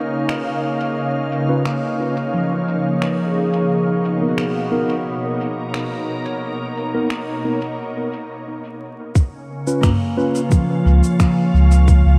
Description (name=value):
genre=ambient dub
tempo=88 BPM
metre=4/4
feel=straight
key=Db mixolydian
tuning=A4 = 440 Hz
part: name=soft additive organ-like pad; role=sustained chords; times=0.0-12.2 s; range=Cb3 to F5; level=-25 LUFS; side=equal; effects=ensemble chorus, built-in reverb
part: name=organic electronic drum kit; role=drums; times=0.3-12.0 s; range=finger snaps, shaker, toms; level=-32 LUFS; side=equal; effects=dub echo
part: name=mellow tine electric piano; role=stabs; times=1.5-10.4 s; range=Cb4 to Cb5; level=-28 LUFS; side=equal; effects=dub echo
part: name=concert harp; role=arpeggios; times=1.7-12.2 s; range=F3 to Db5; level=-24 LUFS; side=equal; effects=dub echo
part: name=electronic kick drum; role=drums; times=9.2-12.0 s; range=none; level=-17 LUFS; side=equal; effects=none
part: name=warm sub bass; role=bass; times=10.9-12.2 s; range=Db2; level=-13 LUFS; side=equal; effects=none
room=moderate huge ambient reverb, RT60 4.0 s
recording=dreamy mix soaked in reverb, vinyl crackle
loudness=-19 LUFS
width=mono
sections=0.0-9.2 A section; 9.2-12.2 B section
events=filter sweep on harp 0.0-9.2; break 7.8-9.2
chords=0.0 Db; 3.7 Cbmaj7; 9.2 Db7